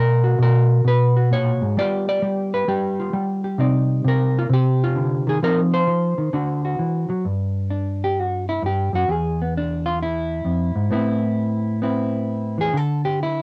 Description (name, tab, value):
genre	solo jazz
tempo	131 BPM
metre	4/4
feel	swing 67% on 8ths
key	G major from 7.2 s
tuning	A4 = 438 Hz
part	hollow-body jazz guitar	solo	0.0-13.4 s	E2 to D5	-21 LUFS	equal	none
room	wet booth ambience, RT60 0.2 s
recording	home recording on cassette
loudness	-21 LUFS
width	mono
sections	0.0-7.2 A section; 7.2-13.4 B section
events	hollow-body jazz guitar solo 7.2-13.4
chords	0.0 B5; 1.8 G7; 3.6 Cm11; 5.4 F5; 6.3 D9; 7.2 G5; 9.1 E; 10.9 Amadd9; 12.7 D5